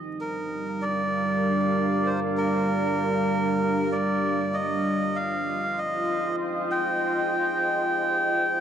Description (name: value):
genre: ambient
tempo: 97 BPM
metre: 4/4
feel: swing 58% on 16ths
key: F dorian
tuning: A4 = 436 Hz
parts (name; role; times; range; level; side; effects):
- deep dark ambient pad; sustained chords; 0.0-8.6 s; G3 to G5; -26 LUFS; equal; chorus, built-in reverb
- melodica; melody; 0.2-8.6 s; Bb4 to G5; -26 LUFS; right 1 dB; dub echo
room: wet spring reverb, RT60 1.9 s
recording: vinyl crackle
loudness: -23 LUFS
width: side -8 dB against mid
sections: 0.0-8.6 A section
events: none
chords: 0.0 Gm7; 4.5 Fm9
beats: 0.21 0.83 1.45 | 2.06 2.68 3.30 3.92 | 4.54 5.16 5.78 6.39 | 7.01 7.63 8.25